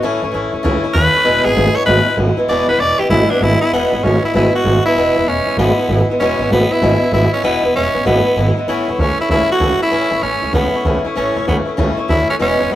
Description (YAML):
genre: rockabilly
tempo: 194 BPM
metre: 4/4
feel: swing 65% on 8ths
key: E major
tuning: A4 = 440 Hz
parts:
  - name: picked swing-style acoustic guitar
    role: accompaniment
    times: 0.0-12.8 s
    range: E2 to E4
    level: -17 LUFS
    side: left 1 dB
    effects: none
  - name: upright bass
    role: bass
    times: 0.0-12.8 s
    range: E1 to D#2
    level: -17 LUFS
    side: right 1 dB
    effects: none
  - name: raspy tenor saxophone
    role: melody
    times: 0.9-12.8 s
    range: B3 to D5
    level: -16 LUFS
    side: equal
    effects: none
room: moderate stone room reverb, RT60 1.1 s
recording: rough rehearsal-room recording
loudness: -12 LUFS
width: side -13 dB against mid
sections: 0.0-3.7 A section; 3.7-12.8 B section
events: tenor saxophone solo 0.0-3.7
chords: 0.0 A; 1.3 E; 8.7 A